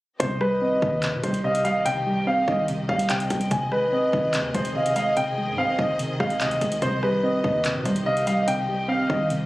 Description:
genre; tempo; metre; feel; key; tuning
hip hop, drill; 145 BPM; 4/4; half-time; C harmonic minor; A4 = 440 Hz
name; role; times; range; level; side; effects
dark baby grand piano; melody; 0.2-9.3 s; B4 to Ab5; -25 LUFS; equal; digital delay
soft round pluck; accompaniment; 0.2-9.5 s; C3 to C4; -28 LUFS; equal; chorus
dark symphonic string section; sustained chords; 0.2-9.5 s; Eb3 to Eb5; -32 LUFS; equal; none
hard-hitting 808-style bass; bass; 0.2-9.5 s; Ab1 to C3; -32 LUFS; right 1 dB; none
drill drum kit; drums; 0.2-9.4 s; handclaps, hi-hat, kick drum, rim click; -30 LUFS; equal; none
breathy flute-like synth lead; second line; 0.6-9.3 s; C5 to F5; -28 LUFS; equal; chorus, digital delay
room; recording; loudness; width
digital ambience; recorded on a phone in the room, club reverb, compression; -21 LUFS; side -18 dB against mid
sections
0.2-9.5 A section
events
none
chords
0.2 Cm; 3.5 Ab; 6.8 Cm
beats
| 0.20 0.61 1.03 1.44 | 1.86 2.27 2.68 3.10 | 3.51 3.92 4.34 4.75 | 5.17 5.58 5.99 6.41 | 6.82 7.24 7.65 8.06 | 8.48 8.89 9.30

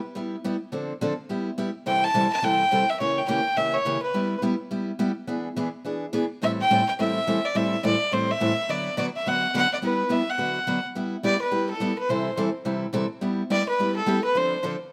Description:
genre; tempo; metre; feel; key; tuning
country; 211 BPM; 4/4; swing 61% on 8ths; G major; A4 = 440 Hz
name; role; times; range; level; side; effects
picked steel-string acoustic guitar; accompaniment; 0.2-14.8 s; A2 to B4; -28 LUFS; equal; none
rich fiddle; melody; 1.9-4.4, 6.4-14.6 s; A4 to A5; -26 LUFS; equal; none
room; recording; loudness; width
moderate echo chamber reverb, RT60 1.7 s; none; -25 LUFS; mono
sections
0.0-11.0 A section; 11.0-14.9 B section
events
fiddle solo 11.0-14.9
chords
0.0 G6; 0.7 Dm7; 1.3 G6; 1.9 C6; 3.0 C#dim7; 4.1 G6; 5.3 E7; 6.4 Am7; 8.7 D6; 9.8 G6; 10.4 D6; 11.0 G6; 12.1 C6; 13.2 G6; 14.4 Dm7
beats
0.15 0.44 | 0.72 1.01 1.29 1.58 | 1.86 2.15 2.43 2.72 | 3.00 3.29 3.57 3.86 | 4.14 4.43 4.71 4.99 | 5.28 5.56 5.85 6.13 | 6.42 6.70 6.98 7.27 | 7.55 7.83 8.12 8.40 | 8.69 8.97 9.25 9.54 | 9.82 10.11 10.39 10.67 | 10.96 11.24 11.52 11.81 | 12.09 12.38 12.66 12.94 | 13.23 13.51 13.79 14.08 | 14.36 14.64

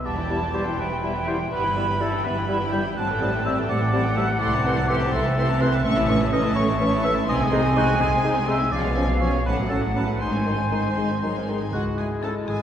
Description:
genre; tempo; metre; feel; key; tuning
cinematic, playful, whimsical film cue; 83 BPM (dotted quarters); 6/8; straight; E minor, C# minor from 5.8 s; A4 = 440 Hz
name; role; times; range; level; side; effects
warm studio violin section; melody; 0.0-12.4 s; E5 to C#6; -34 LUFS; left 1 dB; none
bright small flute group; second line; 0.0-11.4 s; E5 to B5; -29 LUFS; right 1 dB; none
warm oboe; second line; 0.0-12.6 s; F#4 to G5; -28 LUFS; equal; none
warm studio violin section; second line; 0.0-12.6 s; A3 to A5; -31 LUFS; left 2 dB; none
rich studio double bass section; bass; 0.0-12.6 s; E1 to C#2; -27 LUFS; equal; none
warm studio cello section; bass; 0.0-12.6 s; C#2 to C3; -28 LUFS; right 2 dB; none
warm studio viola section; accompaniment; 0.1-12.4 s; D#3 to E4; -31 LUFS; right 1 dB; none
mellow clarinet; second line; 0.3-12.6 s; C4 to E4; -35 LUFS; left 1 dB; none
dark bassoon; accompaniment; 0.3-12.6 s; D#3 to G#3; -31 LUFS; equal; none
dark French horn section; sustained chords; 0.3-12.3 s; D#3 to E4; -32 LUFS; left 2 dB; none
marimba with hard mallets; melody; 11.7-12.6 s; F#4 to A4; -38 LUFS; left 7 dB; none
room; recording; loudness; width
wet church reverb, RT60 2.7 s; recorded in a church or concert hall; -20 LUFS; side -9 dB against mid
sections
0.0-11.7 A section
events
none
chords
0.0 Em; 1.5 Em/G; 3.0 Am7; 4.4 Am/C; 5.8 A; 7.3 G#/B#; 8.7 C#7/B; 9.5 F#m/A; 10.2 G#; 11.7 C#m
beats
| 0.05 0.79 | 1.51 2.24 | 2.97 3.69 | 4.41 5.13 | 5.84 6.56 | 7.28 8.01 | 8.72 9.46 | 10.20 10.97 | 11.73 12.47

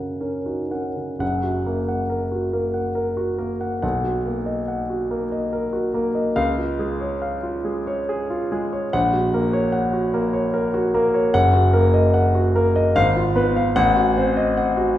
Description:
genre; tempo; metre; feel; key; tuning
classical, romantic character piece for solo piano; 58-76 BPM; 3/4; rubato; F# major, Eb minor from 11.3 s; A4 = 439 Hz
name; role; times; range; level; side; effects
warm concert grand piano; solo; 0.0-15.0 s; F#1 to F#5; -18 LUFS; equal; none
room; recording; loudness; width
wet recital hall reverb, RT60 1.3 s; recorded in a church or concert hall; -18 LUFS; side -12 dB against mid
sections
0.0-1.2 A section; 1.2-15.0 B section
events
none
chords
0.0 F#; 3.8 Bmaj7; 6.4 C#; 8.9 F#/A#; 11.3 Ebm/Gb; 12.9 Fdim/Ab; 13.8 Adim7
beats
0.22 | 1.21 2.11 2.97 | 3.83 4.68 5.53 | 6.37 7.22 8.09 | 8.93 9.73 10.53 | 11.34 12.14 12.95 | 13.76 14.57

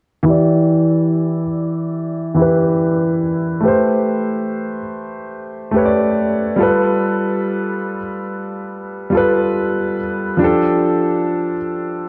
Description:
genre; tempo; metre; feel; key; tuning
hip hop; 71 BPM; 4/4; swing 64% on 16ths; unclear; A4 = 440 Hz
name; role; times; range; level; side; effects
warm upright piano; accompaniment; 0.2-12.1 s; E3 to D5; -18 LUFS; equal; cassette tape, low-pass filter
room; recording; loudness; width
moderate plate reverb, RT60 3.1 s; dark, warm production; -17 LUFS; mono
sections
0.3-12.1 A section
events
filter sweep on upright piano 0.3-12.1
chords
0.3 Em7; 3.6 Am9; 6.6 G9; 10.4 F69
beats
| 0.26 1.10 1.95 2.79 | 3.63 4.48 5.33 6.17 | 7.01 7.86 8.71 9.55 | 10.40 11.24 12.09

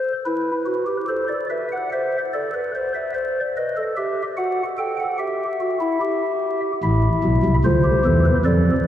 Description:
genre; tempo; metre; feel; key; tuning
classical, baroque-style 3-part fugue for pipe organ; 73 BPM; 4/4; straight; A minor; A4 = 438 Hz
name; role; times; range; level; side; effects
chamber organ, stopped flute; solo; 0.0-8.9 s; A1 to G5; -19 LUFS; equal; none
room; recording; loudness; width
wet cathedral reverb, RT60 5.6 s; recorded in a church or concert hall, vinyl crackle; -19 LUFS; side -11 dB against mid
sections
0.0-8.9 A section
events
none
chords
0.3 E5; 1.9 Am (rootless); 3.6 B7 (rootless); 5.2 Em; 6.8 Am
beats
| 0.25 1.08 1.91 2.74 | 3.56 4.38 5.20 6.02 | 6.84 7.66 8.47

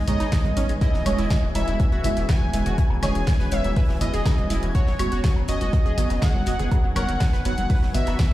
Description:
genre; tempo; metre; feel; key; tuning
progressive house; 122 BPM; 4/4; straight; unclear; A4 = 440 Hz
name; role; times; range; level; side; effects
plucky unison lead; melody; 0.0-8.3 s; C#5 to G#5; -30 LUFS; equal; sidechain pumping, ping-pong delay
warm analog pad; sustained chords; 0.0-8.3 s; D#3 to G#4; -33 LUFS; left 1 dB; wide subtle chorus, sidechain pumping
wide unison pluck; arpeggios; 0.0-8.3 s; E3 to B4; -32 LUFS; equal; sidechain pumping, ping-pong delay
saturated sub bass; bass; 0.0-8.2 s; E1 to A#1; -26 LUFS; equal; sidechain pumping
twinkling granular texture; texture; 0.0-8.3 s; G#5; -40 LUFS; equal; built-in reverb, sidechain pumping
deep mellow chord stab; stabs; 0.1-8.1 s; G#3 to E5; -30 LUFS; right 3 dB; chorus, phaser, sidechain pumping
crisp fusion drum kit; drums; 0.1-8.3 s; hi-hat, snare drum; -42 LUFS; right 2 dB; none
deep house drum kit; drums; 0.1-8.3 s; hi-hat, snare drum, woodblock; -31 LUFS; equal; sidechain pumping on hats, sidechain pumping on perc
congas and woodblock; percussion; 0.1-8.2 s; none; -33 LUFS; right 2 dB; sidechain pumping on perc
electronic kick drum; drums; 0.3-8.3 s; none; -21 LUFS; equal; none
room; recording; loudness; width
little or no reverb; played on a big sound system in a bare room, large studio reverb; -19 LUFS; side -15 dB against mid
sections
0.0-8.3 A section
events
none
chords
0.0 G#m; 0.8 E6; 4.7 F#sus4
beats
0.32 | 0.81 1.31 1.80 2.29 | 2.78 3.27 3.77 4.26 | 4.75 5.24 5.73 6.22 | 6.72 7.21 7.70 8.19

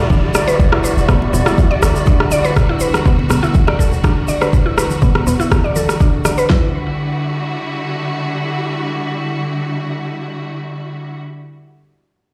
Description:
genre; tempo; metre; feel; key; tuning
afro house; 122 BPM; 4/4; straight; E minor; A4 = 440 Hz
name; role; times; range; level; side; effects
clear symphonic string section; sustained chords; 0.0-11.2 s; D3 to F#4; -24 LUFS; equal; sidechain pumping
tonewheel organ; stabs; 0.0-2.5 s; G3 to D5; -24 LUFS; equal; slow rotary speaker, sidechain pumping, delay
downlifter; sound effects; 0.0-2.6 s; none; -36 LUFS; equal; none
mallet-like synth pluck; arpeggios; 0.1-6.7 s; B3 to D5; -22 LUFS; equal; chorus, sidechain pumping, delay
warm 808-style bass; bass; 0.1-1.9 s; D1 to G1; -21 LUFS; equal; sidechain pumping
deep house drum kit; drums; 0.1-6.6 s; kick drum, snare drum; -17 LUFS; equal; none
congas; percussion; 0.1-6.4 s; none; -24 LUFS; equal; none
tube shaker; percussion; 0.1-6.5 s; none; -32 LUFS; equal; none
electronic rim click; drums; 0.3-6.4 s; none; -23 LUFS; equal; none
room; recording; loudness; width
light reverb; played on a big sound system in a bare room, stone room reverb; -16 LUFS; mono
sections
0.0-6.5 A section; 6.5-10.4 B section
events
none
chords
0.0 Em9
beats
0.10 | 0.59 1.09 1.58 2.07 | 2.56 3.05 3.54 4.04 | 4.53 5.02 5.51 6.00 | 6.50 6.99 7.48 7.97 | 8.46 8.96 9.45 9.94

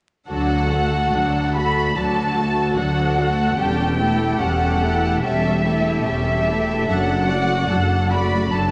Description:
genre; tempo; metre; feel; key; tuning
classical; 73 BPM; 4/4; rubato; D major; A4 = 438 Hz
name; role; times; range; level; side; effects
rich symphonic violin section; melody; 0.3-8.7 s; E5 to B5; -25 LUFS; equal; none
bright symphonic violin section; second line; 0.3-8.7 s; F#4 to D5; -29 LUFS; equal; none
rich symphonic viola section; accompaniment; 0.3-8.7 s; F#3 to F#4; -26 LUFS; equal; none
rich symphonic cello section; bass; 0.3-8.7 s; D2 to F#2; -27 LUFS; equal; none
rich symphonic double bass section; bass; 0.3-8.7 s; E1 to D2; -27 LUFS; equal; none
room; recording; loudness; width
moderate scoring stage reverb, RT60 1.6 s; vinyl crackle, nothing above 10.4 kHz; -20 LUFS; mono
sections
0.3-8.7 A section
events
none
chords
0.3 D; 3.6 A7/E; 6.9 D/F#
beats
| 0.29 1.14 1.97 2.78 | 3.58 4.40 5.24 6.06 | 6.88 7.70 8.51

